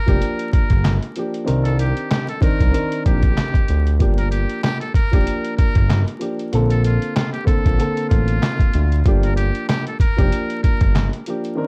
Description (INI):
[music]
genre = hip hop, boom-bap hip-hop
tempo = 95 BPM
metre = 4/4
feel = swing 56% on 16ths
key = G minor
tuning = A4 = 438 Hz
[part]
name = trumpet with metal mute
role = melody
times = 0.0-11.1 s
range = F4 to Bb4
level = -30 LUFS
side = equal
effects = high-pass filter, low-pass filter, plate reverb, delay
[part]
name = dark concert grand piano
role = accompaniment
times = 0.1-11.7 s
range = D3 to Bb4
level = -27 LUFS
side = equal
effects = high-pass filter, low-pass filter, plate reverb
[part]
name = smooth synth bass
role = bass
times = 0.1-11.1 s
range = F1 to D2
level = -20 LUFS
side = equal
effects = none
[part]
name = trip hop sampler-style drum kit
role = drums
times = 0.1-11.6 s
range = handclaps, hi-hat, kick drum, snare drum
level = -20 LUFS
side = equal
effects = none
[sound]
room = little or no reverb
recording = dark, warm production, vinyl crackle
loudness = -18 LUFS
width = mono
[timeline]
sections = 0.0-11.7 A section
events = none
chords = 0.0 Gm7; 1.5 Cm9; 4.0 Gm7; 6.5 Bbmaj9; 9.1 Gm7